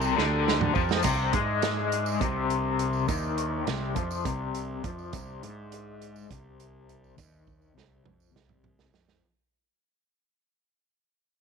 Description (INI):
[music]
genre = psychedelic rock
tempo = 206 BPM (eighths)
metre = 7/8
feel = straight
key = unclear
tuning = A4 = 441 Hz
[part]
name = overdriven combo organ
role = sustained chords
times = 0.0-9.2 s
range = D4 to E5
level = -37 LUFS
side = right 12 dB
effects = low-pass filter
[part]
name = overdriven electric guitar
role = riff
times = 0.0-9.2 s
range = C3 to Ab3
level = -29 LUFS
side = left 12 dB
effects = tremolo, low-pass filter
[part]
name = fuzz fingered electric bass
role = bass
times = 0.0-9.2 s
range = C2 to Ab2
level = -32 LUFS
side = right 2 dB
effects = overdrive
[part]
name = tambourine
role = percussion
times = 0.0-9.1 s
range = none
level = -44 LUFS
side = right 16 dB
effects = none
[part]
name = vintage drum kit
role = drums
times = 0.2-9.2 s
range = hi-hat, kick drum, snare drum, splash cymbal, toms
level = -30 LUFS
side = right 6 dB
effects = none
[sound]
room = light reverb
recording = 1960s-style stereo with parts hard left and right, faint mains hum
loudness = -25 LUFS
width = side -6 dB against mid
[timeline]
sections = 0.0-9.2 A section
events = fade-out 0.0-9.2; filter sweep 0.0-9.2; drum fill 0.2-1.0, 7.5-9.2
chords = 0.0 Gmadd9; 1.0 Cadd9